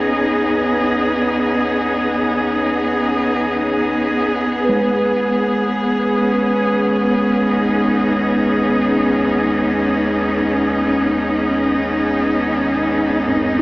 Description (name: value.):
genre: dark ambient drone.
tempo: free time.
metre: none.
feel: none.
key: G# minor.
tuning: A4 = 440 Hz.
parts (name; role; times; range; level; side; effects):
warm studio cello section; sustained chords; 0.0-13.6 s; B3 to G#4; -16 LUFS; equal; none.
deep rumbling drone; drone; 0.0-13.6 s; G#1 to D#2; -35 LUFS; equal; built-in reverb, lush chorus.
bronze singing bowl; texture; 0.0-13.6 s; B4; -26 LUFS; right 1 dB; none.
bronze singing bowl; arpeggios; 4.7-13.6 s; G2 to G#3; -21 LUFS; equal; tape echo.
room: wet cathedral reverb, RT60 5.7 s.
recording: small speaker sound.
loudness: -15 LUFS.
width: side -22 dB against mid.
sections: 0.0-4.7 A section; 4.7-13.6 B section.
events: filter sweep on synth drone 0.0-4.7.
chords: 0.0 G#m.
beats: free time.